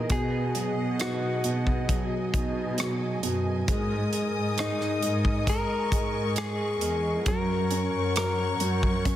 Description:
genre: pop ballad.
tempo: 67 BPM.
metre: 4/4.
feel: straight.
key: G# minor.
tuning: A4 = 440 Hz.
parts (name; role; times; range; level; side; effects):
direct-recorded clean electric guitar; melody; 0.0-9.0 s; D#4 to A#4; -31 LUFS; left 2 dB; tape echo.
warm concert grand piano; accompaniment; 0.0-9.2 s; B2 to F#4; -31 LUFS; right 3 dB; none.
warm studio string section; sustained chords; 0.0-9.2 s; G#4 to D#6; -34 LUFS; left 2 dB; none.
dark studio cello section; bass; 0.0-9.2 s; E2 to B2; -30 LUFS; equal; none.
modern studio drum kit; drums; 0.1-9.2 s; hi-hat, kick drum, rim click; -29 LUFS; equal; soft clipping on snare.
room: light reverb, studio reverb.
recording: dense, heavily limited modern master.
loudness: -24 LUFS.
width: side -12 dB against mid.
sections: 0.0-9.2 A section.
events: none.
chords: 0.1 B6; 3.7 G#sus2; 7.3 F#.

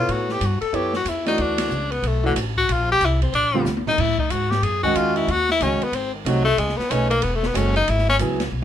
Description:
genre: jazz, small-group swing and bop.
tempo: 185 BPM.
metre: 4/4.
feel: swing 63% on 8ths.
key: C# minor.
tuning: A4 = 440 Hz.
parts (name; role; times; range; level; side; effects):
breathy tenor saxophone; melody; 0.0-8.2 s; D3 to A4; -21 LUFS; left 3 dB; none.
warm baby grand piano; accompaniment; 0.0-8.4 s; D3 to C#5; -24 LUFS; right 2 dB; none.
upright bass; bass; 0.0-8.6 s; E1 to A2; -24 LUFS; equal; none.
open jazz drum kit; drums; 0.1-8.6 s; crash cymbal, hi-hat, kick drum, ride cymbal, snare drum, toms; -29 LUFS; right 1 dB; none.
room: light reverb.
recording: minimal, uncompressed stereo recording.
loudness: -18 LUFS.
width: side -10 dB against mid.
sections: 0.0-8.6 A section.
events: tenor saxophone solo 0.0-8.6; drum fill 3.7-4.0.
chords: 0.1 A7; 1.4 D6; 2.7 A#; 4.0 Amaj7; 5.3 C#madd9; 5.9 G#7b9; 6.6 C#m7.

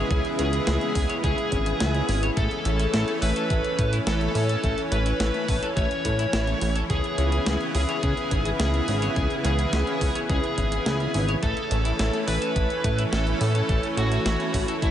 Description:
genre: synthwave.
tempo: 106 BPM.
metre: 4/4.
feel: straight.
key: C# minor.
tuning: A4 = 440 Hz.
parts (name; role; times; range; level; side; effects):
smooth overdriven lead guitar; melody; 0.0-14.9 s; E4 to C#5; -28 LUFS; left 2 dB; tape echo.
lush unison pad; sustained chords; 0.0-14.9 s; C#3 to E4; -28 LUFS; right 1 dB; chorus, sidechain pumping.
electric guitar at the edge of break-up; riff; 0.0-14.9 s; A3 to C#5; -34 LUFS; left 2 dB; wide subtle chorus, analog delay.
chorused synth bass; bass; 0.0-14.9 s; G#1 to A2; -25 LUFS; equal; sidechain pumping.
clean 12-bit digital drum machine; drums; 0.1-14.9 s; hi-hat, snare drum; -32 LUFS; equal; none.
electronic kick drum; drums; 0.1-14.9 s; none; -28 LUFS; equal; none.
room: moderate huge ambient reverb, RT60 7.9 s.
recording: dreamy mix soaked in reverb, nothing above 10.7 kHz.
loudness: -22 LUFS.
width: side -10 dB against mid.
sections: 0.0-14.9 A section.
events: none.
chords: 0.0 C#m7; 2.4 A; 6.9 C#m7; 11.4 A.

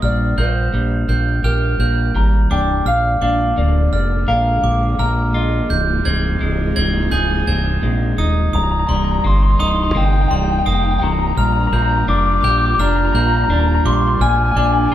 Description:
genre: rock.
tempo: 85 BPM.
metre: 4/4.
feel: straight.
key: C minor.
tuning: A4 = 440 Hz.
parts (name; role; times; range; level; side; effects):
electric guitar through a small old amp; melody; 0.0-14.9 s; Bb4 to D6; -20 LUFS; left 3 dB; none.
clean electric guitar; arpeggios; 0.0-14.9 s; C2 to Bb4; -23 LUFS; left 1 dB; none.
glockenspiel with brass mallets; arpeggios; 0.0-14.9 s; C6 to Ab6; -23 LUFS; right 4 dB; none.
growling fingered electric bass; bass; 0.0-14.9 s; C1 to Bb1; -17 LUFS; equal; overdrive.
warm symphonic string section; sustained chords; 2.9-14.9 s; C3 to F4; -27 LUFS; right 2 dB; none.
room: moderate large studio reverb, RT60 1.2 s.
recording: band playing live in one room.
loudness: -14 LUFS.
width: side -12 dB against mid.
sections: 0.0-8.5 A section; 8.5-14.9 B section.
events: build-up 8.5-14.9.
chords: 0.0 Gm7/Bb; 2.9 Bb7; 5.7 Ab6/C; 8.5 Cm7; 11.4 Gm7; 14.2 Bb7.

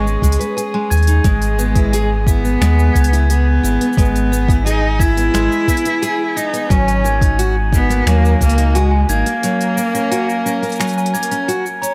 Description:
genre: folktronica.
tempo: 88 BPM.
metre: 4/4.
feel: straight.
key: unclear.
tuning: A4 = 441 Hz.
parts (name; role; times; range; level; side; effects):
rich cello; melody; 0.0-11.4 s; G#3 to E4; -22 LUFS; equal; delay.
glockenspiel with rubber mallets; second line; 0.0-11.9 s; G#5 to G#6; -26 LUFS; equal; tape echo.
warm string quartet; sustained chords; 0.0-11.9 s; E3 to A#4; -30 LUFS; equal; none.
picked steel-string acoustic guitar; arpeggios; 0.0-11.9 s; F#3 to G#5; -24 LUFS; equal; none.
warm sub bass; bass; 0.0-9.2 s; G#1 to D#2; -18 LUFS; equal; none.
organic electronic drum kit; drums; 0.1-11.9 s; cabasa, finger snaps, hi-hat; -29 LUFS; equal; none.
electronic kick drum; drums; 0.2-8.5 s; none; -18 LUFS; equal; none.
room: light reverb, studio ambience.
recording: none.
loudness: -15 LUFS.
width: mono.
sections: 0.0-11.9 A section.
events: break 9.4-11.9.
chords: 0.0 G#m; 1.2 E/G#; 6.7 D#m/G#; 9.4 F#.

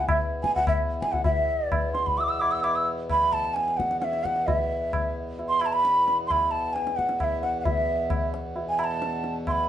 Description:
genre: indian classical, Hindustani.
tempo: 131 BPM.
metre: 7/4.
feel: straight.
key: E major.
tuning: A4 = 441 Hz.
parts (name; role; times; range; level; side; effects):
mellow bansuri; melody; 0.0-9.7 s; E5 to E6; -24 LUFS; right 1 dB; none.
hand-pumped harmonium; drone; 0.0-9.7 s; E2 to B2; -34 LUFS; left 1 dB; none.
tabla; percussion; 0.1-9.6 s; none; -28 LUFS; left 1 dB; none.
room: moderate studio reverb, RT60 0.6 s.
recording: band playing live in one room, nothing above 11.0 kHz, faint mains hum.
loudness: -23 LUFS.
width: side -10 dB against mid.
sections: 0.0-1.2 A section; 1.2-9.7 B section.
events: none.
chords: none.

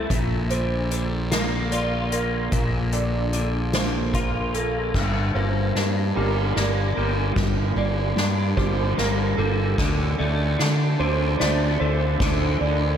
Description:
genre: post-rock.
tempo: 50 BPM (dotted quarters).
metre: 6/8.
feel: straight.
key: G minor.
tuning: A4 = 441 Hz.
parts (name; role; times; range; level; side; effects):
clean electric guitar; arpeggios; 0.0-13.0 s; G2 to F4; -27 LUFS; left 2 dB; ensemble chorus, analog delay.
felt-muted upright piano; arpeggios; 0.0-13.0 s; A4 to D5; -29 LUFS; right 4 dB; ensemble chorus, analog delay.
fuzz fingered electric bass; bass; 0.0-13.0 s; G1 to D3; -24 LUFS; equal; overdrive.
soft-mallet drum kit; drums; 0.1-12.8 s; crash cymbal, hi-hat, kick drum, ride cymbal, snare drum; -26 LUFS; right 1 dB; none.
room: moderate lush hall reverb, RT60 2.7 s.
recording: dreamy mix soaked in reverb.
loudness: -20 LUFS.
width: side -8 dB against mid.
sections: 0.0-4.9 A section; 4.9-13.0 B section.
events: build-up 4.9-13.0; drum fill 4.9-13.0.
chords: 0.1 Bb; 4.9 Gm; 9.8 D5.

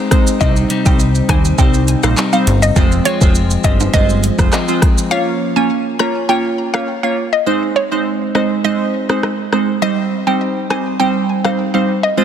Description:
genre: dancehall.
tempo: 102 BPM.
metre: 4/4.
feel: straight.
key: unclear.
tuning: A4 = 439 Hz.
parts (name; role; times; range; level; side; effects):
clean electric guitar; arpeggios; 0.0-5.7 s; F2 to Eb4; -21 LUFS; left 5 dB; none.
glassy wavetable pluck; accompaniment; 0.1-12.2 s; G3 to Db5; -17 LUFS; right 2 dB; chorus, sidechain pumping.
afro-pop drum kit; drums; 0.1-11.6 s; handclaps, hi-hat, kick drum, rim click, shaker; -15 LUFS; equal; soft clipping on snare.
maracas and timbales; percussion; 0.3-5.1 s; none; -27 LUFS; right 9 dB; none.
hollow square pluck; melody; 0.4-12.1 s; Db5 to Bb5; -20 LUFS; equal; chorus, digital delay.
plucky analog bass; bass; 0.4-4.5 s; F1 to Eb2; -15 LUFS; equal; none.
room: light reverb.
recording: dense, heavily limited modern master.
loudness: -12 LUFS.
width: side -9 dB against mid.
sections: 0.0-5.1 A section; 5.1-12.2 B section.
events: none.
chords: 0.4 Cm; 2.8 Fm; 5.1 Bbm; 7.5 Ab; 9.8 Cm.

